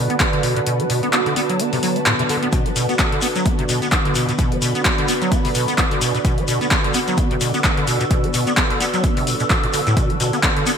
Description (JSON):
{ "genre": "acid house", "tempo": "129 BPM", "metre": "4/4", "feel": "swing 57% on 16ths", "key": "B minor", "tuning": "A4 = 440 Hz", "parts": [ { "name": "warm analog pad", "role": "sustained chords", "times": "0.0-10.8 s", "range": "D3 to B4", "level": "-26 LUFS", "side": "equal", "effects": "chorus, sidechain pumping" }, { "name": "acid bass, square", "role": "riff", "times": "0.0-10.7 s", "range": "A2 to B3", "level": "-21 LUFS", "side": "equal", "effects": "ensemble chorus, sidechain pumping, ping-pong delay" }, { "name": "ethereal airy pad", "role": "texture", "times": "0.0-10.8 s", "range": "F#4 to E6", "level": "-25 LUFS", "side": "right 2 dB", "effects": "ensemble chorus, built-in reverb, phaser, sidechain pumping" }, { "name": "punchy analog drum machine", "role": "drums", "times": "0.1-10.8 s", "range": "handclaps, hi-hat", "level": "-22 LUFS", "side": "left 1 dB", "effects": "overdrive, gated reverb" }, { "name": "electronic kick drum", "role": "drums", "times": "0.2-10.5 s", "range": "none", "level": "-20 LUFS", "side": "equal", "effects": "overdrive" }, { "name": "shekere", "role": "percussion", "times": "2.5-10.8 s", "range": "none", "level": "-29 LUFS", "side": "left 4 dB", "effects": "none" } ], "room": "light reverb", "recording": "bright 1980s-style digital production", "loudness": "-16 LUFS", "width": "side -7 dB against mid", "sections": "0.0-10.8 A section", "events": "kick drops out 0.7-2.5", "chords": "0.0 Bm" }